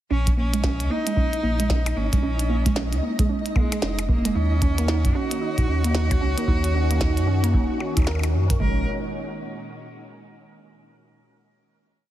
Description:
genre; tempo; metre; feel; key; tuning
IDM; 113 BPM; 4/4; swing 62% on 16ths; Bb minor; A4 = 445 Hz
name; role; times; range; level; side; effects
clear cello; melody; 0.1-8.8 s; Ab3 to Bb4; -31 LUFS; equal; dub echo
warbly dusty pluck; arpeggios; 0.1-8.8 s; Ab3 to Bb4; -28 LUFS; right 4 dB; chorus, cassette tape, dub echo
warm sub bass; bass; 0.1-8.8 s; Eb1 to Gb2; -23 LUFS; equal; none
flickering grainy texture; texture; 0.5-8.6 s; Eb4 to Eb5; -36 LUFS; equal; built-in reverb, sidechain pumping
electronic kick drum; drums; 0.3-8.8 s; none; -23 LUFS; equal; studio reverb
glitchy drum kit; drums; 0.3-8.6 s; hi-hat, percussion blips, snare drum; -30 LUFS; equal; overdrive, studio reverb
soft string machine; sustained chords; 4.4-8.8 s; Bb2 to Gb4; -31 LUFS; left 1 dB; phaser, ensemble chorus, vintage 12-bit sampler grit, sidechain pumping
room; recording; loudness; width
little or no reverb; heavily compressed radio sound; -20 LUFS; side -13 dB against mid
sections
0.1-8.6 groove; 8.6-10.7 final chord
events
none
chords
0.1 Bbm7; 4.4 Ebm7; 8.6 Bbm7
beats
| 0.10 0.64 1.17 1.70 | 2.23 2.76 3.29 3.82 | 4.35 4.88 5.42 5.95 | 6.48 7.01 7.54 8.07 | 8.60

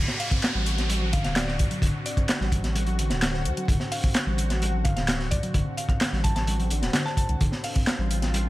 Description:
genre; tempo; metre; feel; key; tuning
breakbeat, breaks; 129 BPM; 4/4; straight; unclear; A4 = 441 Hz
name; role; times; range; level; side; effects
lush unison pad; sustained chords; 0.0-8.5 s; D3 to F#4; -34 LUFS; left 1 dB; chorus, phaser, vintage 12-bit sampler grit, sidechain pumping
hollow-body short-scale picked electric bass; riff; 0.0-8.5 s; D3 to D4; -33 LUFS; equal; vintage 12-bit sampler grit
saturated sub bass; bass; 0.0-8.5 s; D1 to D2; -27 LUFS; equal; none
downlifter; sound effects; 0.0-3.7 s; none; -34 LUFS; equal; none
crunchy breakbeat drum kit; drums; 0.1-8.4 s; hi-hat, kick drum, snare drum; -26 LUFS; equal; none
mallet-like synth pluck; melody; 0.2-7.8 s; D5 to A5; -36 LUFS; equal; chorus, old record sound, tape echo
house drum kit; drums; 0.2-8.4 s; handclaps, hi-hat; -32 LUFS; equal; none
room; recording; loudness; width
small room ambience; vinyl crackle; -22 LUFS; side -17 dB against mid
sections
0.0-8.5 A section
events
none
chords
0.0 D7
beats
0.43 0.90 1.36 | 1.82 2.29 2.75 3.22 | 3.69 4.15 4.62 5.08 | 5.55 6.01 6.48 6.94 | 7.41 7.87 8.34

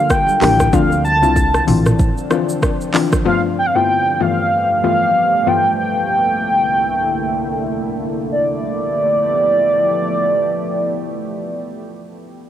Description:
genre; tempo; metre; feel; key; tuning
afrobeats; 95 BPM; 4/4; swing 58% on 16ths; unclear; A4 = 440 Hz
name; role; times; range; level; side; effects
warm velvety synth lead; melody; 0.0-11.6 s; D5 to A5; -16 LUFS; right 1 dB; chorus, cassette tape, tape echo
deep dark ambient pad; sustained chords; 0.0-11.6 s; C2 to G4; -23 LUFS; equal; chorus, built-in reverb, cassette tape
afro-pop drum kit; drums; 0.1-3.2 s; handclaps, hi-hat, kick drum, rim click, shaker, toms; -18 LUFS; right 1 dB; cassette tape
congas; percussion; 0.3-0.6 s; none; -31 LUFS; right 9 dB; none
soft round pluck; accompaniment; 0.4-5.7 s; G2 to G4; -19 LUFS; left 7 dB; chorus, cassette tape
nylon-string guitar; riff; 0.4-0.5 s; D4 to Bb4; -26 LUFS; right 9 dB; none
upright bass; bass; 0.4-2.1 s; A1 to D2; -18 LUFS; right 1 dB; none
room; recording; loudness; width
light reverb; home recording on cassette; -14 LUFS; side -10 dB against mid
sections
0.0-8.3 A section; 8.3-10.8 B section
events
none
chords
0.0 C7sus2 (rootless); 0.7 Dm9; 3.3 G13; 5.8 C13; 8.3 G13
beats
0.10 | 0.73 1.36 1.99 2.62 | 3.26 3.89 4.52 5.15 | 5.78 6.41 7.05 7.68 | 8.31 8.94 9.57 10.20

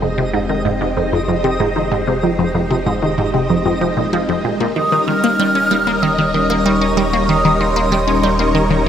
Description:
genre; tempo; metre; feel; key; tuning
ambient; 95 BPM; 4/4; straight; unclear; A4 = 440 Hz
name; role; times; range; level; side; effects
string machine, full ensemble; sustained chords; 0.0-8.9 s; G3 to Db5; -20 LUFS; left 1 dB; phaser, ensemble chorus
resonant blip pluck; riff; 0.0-8.9 s; F2 to Db4; -17 LUFS; equal; phaser, tape echo
round analog bass; bass; 0.0-8.9 s; Eb1 to F1; -25 LUFS; equal; none
twinkling granular texture; texture; 0.0-8.9 s; Eb5; -25 LUFS; right 2 dB; built-in reverb
mellow hollow concert flute; melody; 4.8-8.9 s; Bb5 to F6; -18 LUFS; right 1 dB; tape echo
room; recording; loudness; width
wet spring reverb, RT60 2.6 s; echo-heavy mix; -14 LUFS; side -9 dB against mid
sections
0.0-8.9 A section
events
fade-in on string machine 0.0-8.9; fade-in on analog synth bass 0.0-8.9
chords
0.0 Fm7; 4.8 Eb7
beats
0.34 0.97 1.60 | 2.23 2.87 3.50 4.13 | 4.76 5.39 6.02 6.65 | 7.29 7.92 8.55

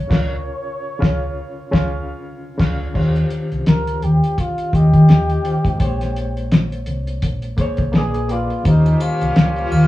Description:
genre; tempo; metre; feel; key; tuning
lush 1970s-style soul; 84 BPM; 4/4; swing 58% on 16ths; unclear; A4 = 443 Hz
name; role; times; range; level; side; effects
breathy flugelhorn; melody; 0.0-9.9 s; Eb4 to Db5; -24 LUFS; equal; none
reed electric piano; accompaniment; 0.0-9.9 s; Db3 to Eb5; -24 LUFS; left 2 dB; fast tremolo
hollow-body short-scale fingered electric bass; bass; 0.1-9.9 s; Ab1 to Eb3; -17 LUFS; equal; none
cloth-damped thuddy drum kit; drums; 0.1-9.9 s; crash cymbal, hi-hat, kick drum, snare drum; -16 LUFS; equal; none
bright studio string section; sustained chords; 8.6-9.9 s; Eb3 to C5; -31 LUFS; equal; none
mellow horn section; stabs; 8.6-9.9 s; Bb2 to Db4; -27 LUFS; right 1 dB; none
triangle; percussion; 8.7-9.9 s; none; -42 LUFS; left 1 dB; none
room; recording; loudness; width
moderate studio reverb, RT60 0.6 s; band playing live in one room, cassette tape, small room ambience; -15 LUFS; side -16 dB against mid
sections
0.0-3.0 A section; 3.0-9.9 B section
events
band accent 0.1-3.0; flugelhorn solo 3.0-9.9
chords
0.1 Db6; 3.0 Eb13; 5.8 Bbm9; 7.9 Bb7b9; 8.7 Eb13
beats
| 0.10 0.82 1.53 2.24 | 2.95 3.67 4.38 5.09 | 5.80 6.52 7.23 7.94 | 8.65 9.36

